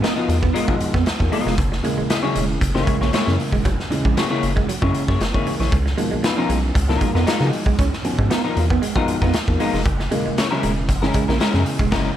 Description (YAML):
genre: funk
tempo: 116 BPM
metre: 4/4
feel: straight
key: unclear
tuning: A4 = 440 Hz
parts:
  - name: semi-hollow electric guitar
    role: accompaniment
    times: 0.0-12.1 s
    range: Ab3 to Eb5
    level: -24 LUFS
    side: left 7 dB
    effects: analog chorus
  - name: electric guitar through a small old amp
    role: riff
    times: 0.0-11.9 s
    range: Fb3 to Db4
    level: -27 LUFS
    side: right 9 dB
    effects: spring reverb
  - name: dark upright piano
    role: stabs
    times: 0.0-12.1 s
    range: Cb3 to Db4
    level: -24 LUFS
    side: equal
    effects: none
  - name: raw garage drum kit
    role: drums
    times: 0.0-12.1 s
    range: crash cymbal, hi-hat, kick drum, snare drum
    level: -22 LUFS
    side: equal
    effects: none
  - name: rubbery square bass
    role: bass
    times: 0.3-12.1 s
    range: Fb1 to Db3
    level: -22 LUFS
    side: equal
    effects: none
room: light reverb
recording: none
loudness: -17 LUFS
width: side -11 dB against mid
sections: 0.0-12.2 A section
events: band accent 11.9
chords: 0.0 Db13 (rootless); 1.6 Gb9; 5.7 Db13; 9.9 Gb9